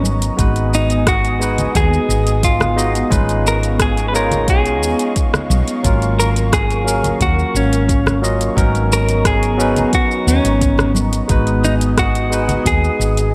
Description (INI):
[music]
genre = sunset chillout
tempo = 88 BPM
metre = 4/4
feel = straight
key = G# dorian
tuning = A4 = 441 Hz
[part]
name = barky tine electric piano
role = accompaniment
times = 0.0-13.3 s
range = F#3 to E#5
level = -24 LUFS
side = equal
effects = overdrive, tape echo
[part]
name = airy breathy pad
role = sustained chords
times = 0.0-13.3 s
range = B3 to D#6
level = -27 LUFS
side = equal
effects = chorus
[part]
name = woody fretless electric bass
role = bass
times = 0.0-13.3 s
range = G#1 to D#2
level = -20 LUFS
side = equal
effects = none
[part]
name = congas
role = percussion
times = 0.0-12.6 s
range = none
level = -28 LUFS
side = equal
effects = none
[part]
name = deep house drum kit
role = drums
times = 0.1-13.3 s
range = hi-hat, rim click, shaker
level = -24 LUFS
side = equal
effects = none
[part]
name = electronic kick drum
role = drums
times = 0.4-12.8 s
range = none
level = -20 LUFS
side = equal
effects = none
[part]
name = clean electric guitar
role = melody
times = 0.7-13.3 s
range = C#4 to B4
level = -22 LUFS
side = equal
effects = spring reverb, tape echo
[sound]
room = light reverb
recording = none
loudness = -16 LUFS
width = mono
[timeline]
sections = 0.0-13.3 A section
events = none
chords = 0.4 G#m7; 3.1 C#9/G#; 5.8 F#maj7/G#; 8.6 Bmaj9/G#; 11.3 G#m7